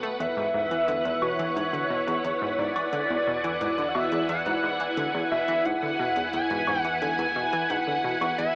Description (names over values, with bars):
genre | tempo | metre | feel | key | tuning
ambient, sequencer-driven space music | 88 BPM | 4/4 | straight | unclear | A4 = 441 Hz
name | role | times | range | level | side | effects
string machine, full ensemble | sustained chords | 0.0-8.6 s | B3 to G#5 | -32 LUFS | equal | ensemble chorus, shimmer reverb
analog pluck | riff | 0.0-8.4 s | E2 to A3 | -34 LUFS | equal | chorus, shimmer reverb, analog delay
fat analog bass | bass | 0.0-8.6 s | B1 to E2 | -49 LUFS | equal | none
electronic hi-hat and woodblock | percussion | 0.0-8.5 s | none | -38 LUFS | equal | none
pulse-width lead | melody | 0.2-8.6 s | C#5 to G#5 | -29 LUFS | equal | chorus, shimmer reverb, analog delay
room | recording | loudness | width
wet huge ambient reverb, RT60 9.0 s | worn, warbling old tape, cassette tape, warbly pitch drift, AM radio sound | -26 LUFS | mono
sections
0.2-8.6 A section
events
none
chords
0.2 Eadd9